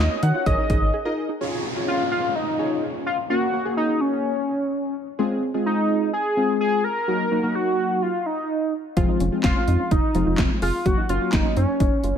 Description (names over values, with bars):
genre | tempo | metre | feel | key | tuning
synth-pop | 127 BPM | 4/4 | straight | Db major | A4 = 442 Hz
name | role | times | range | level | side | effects
octave-doubled lead | melody | 0.0-12.2 s | Db4 to Gb5 | -24 LUFS | equal | chorus, ping-pong delay
warm analog keys | accompaniment | 0.0-11.9 s | F3 to Eb5 | -25 LUFS | left 1 dB | chorus
soft round pluck | arpeggios | 0.0-1.4, 9.0-12.2 s | Db4 to Ab4 | -32 LUFS | right 5 dB | chorus, ping-pong delay
rubbery square bass | bass | 0.0-0.9, 9.0-12.2 s | F1 to Eb3 | -23 LUFS | equal | none
swell and downlifter | sound effects | 0.0-5.2 s | none | -32 LUFS | equal | none
punchy analog drum machine | drums | 0.2-0.8, 9.0-12.1 s | handclaps, hi-hat, kick drum, snare drum | -23 LUFS | equal | overdrive, gated reverb
room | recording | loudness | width
light reverb, digital ambience | none | -20 LUFS | side -8 dB against mid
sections
0.0-1.4 A section; 1.4-12.2 B section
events
swell 0.0-1.4; break 0.9-1.4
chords
0.5 Absus2; 1.4 Db; 3.3 Gbadd9; 5.2 Fm; 7.1 Ebm; 9.0 Fm; 10.9 Gb